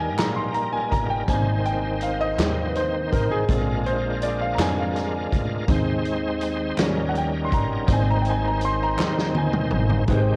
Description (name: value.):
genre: slow gospel.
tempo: 54 BPM (dotted quarters).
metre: 6/8.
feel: straight.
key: Ab major.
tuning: A4 = 442 Hz.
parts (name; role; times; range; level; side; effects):
clear concert grand piano; accompaniment; 0.0-10.4 s; C3 to C6; -28 LUFS; equal; cassette tape.
bright tonewheel organ; sustained chords; 0.0-10.4 s; Eb3 to C5; -30 LUFS; equal; slow rotary speaker, overdrive, chorus vibrato, cassette tape.
upright bass; bass; 0.0-10.4 s; G1 to Bb2; -30 LUFS; equal; none.
swinging big-band drum kit; drums; 0.2-10.3 s; hi-hat, kick drum, snare drum, toms; -28 LUFS; equal; cassette tape.
group handclap; percussion; 0.2-9.3 s; none; -36 LUFS; equal; none.
room: light reverb.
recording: home recording on cassette.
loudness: -23 LUFS.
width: mono.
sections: 0.0-10.1 A section.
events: grand piano solo 0.0-10.1; drum fill 9.0-10.1.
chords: 0.0 Eb; 1.3 Abmaj7; 3.5 Bb7; 5.7 Ab/Eb; 6.8 Eb7; 7.9 Abmaj7.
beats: 0.18 | 1.28 2.38 | 3.48 4.58 | 5.68 6.78 | 7.88 8.98 | 10.08.